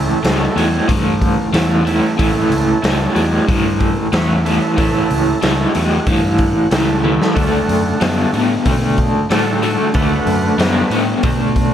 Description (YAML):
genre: blues rock power trio and southern rock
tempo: 93 BPM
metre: 4/4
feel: straight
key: A mixolydian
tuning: A4 = 437 Hz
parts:
  - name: overdriven tonewheel organ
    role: sustained chords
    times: 0.0-11.0 s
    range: A3 to B5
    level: -23 LUFS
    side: right 3 dB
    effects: lush chorus
  - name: crunchy overdriven guitar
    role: riff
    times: 0.0-11.7 s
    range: A2 to B3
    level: -16 LUFS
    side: equal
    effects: tremolo
  - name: fingered electric bass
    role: bass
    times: 0.0-11.7 s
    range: A1 to B2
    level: -20 LUFS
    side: equal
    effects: none
  - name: raw garage drum kit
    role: drums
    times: 0.2-11.7 s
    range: hi-hat, kick drum, snare drum, toms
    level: -19 LUFS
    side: equal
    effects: none
room: light reverb, small room reverb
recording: none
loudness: -13 LUFS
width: side -10 dB against mid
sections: 0.0-11.7 A section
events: tonewheel organ fill 5.4-7.4; drum fill 7.0-7.4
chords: 0.0 A; 7.4 D